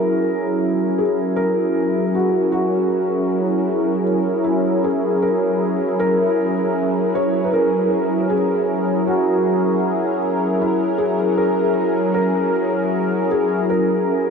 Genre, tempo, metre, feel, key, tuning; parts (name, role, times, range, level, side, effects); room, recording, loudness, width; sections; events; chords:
ambient; 78 BPM; 4/4; straight; F# mixolydian; A4 = 441 Hz
felt-muted upright piano; melody; 0.0-14.3 s; E4 to C#5; -22 LUFS; left 1 dB; tape echo
warm analog pad; sustained chords; 0.0-14.3 s; F#3 to A#4; -18 LUFS; equal; chorus
wet huge ambient reverb, RT60 7.1 s; dark, warm production; -16 LUFS; side -5 dB against mid
0.0-13.7 A section
filter sweep on analog synth pad 0.0-13.7
0.0 F#7